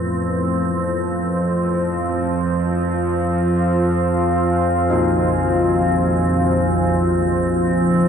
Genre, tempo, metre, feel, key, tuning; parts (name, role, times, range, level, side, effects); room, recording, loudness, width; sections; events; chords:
dark ambient drone; free time; F minor; A4 = 440 Hz
deep dark ambient pad; sustained chords; 0.0-8.1 s; A3 to Ab5; -21 LUFS; equal; chorus, built-in reverb
analog drone; drone; 0.0-8.1 s; F2 to F3; -20 LUFS; equal; chorus
icy glass pad; texture; 0.0-8.1 s; C4; -26 LUFS; right 2 dB; chorus, built-in reverb
old church bells; arpeggios; 4.9-8.1 s; Bb2 to Eb4; -24 LUFS; left 2 dB; ping-pong delay
wet huge ambient reverb, RT60 8.4 s; -16 LUFS; side -7 dB against mid
0.0-8.1 A section
0.1 Fm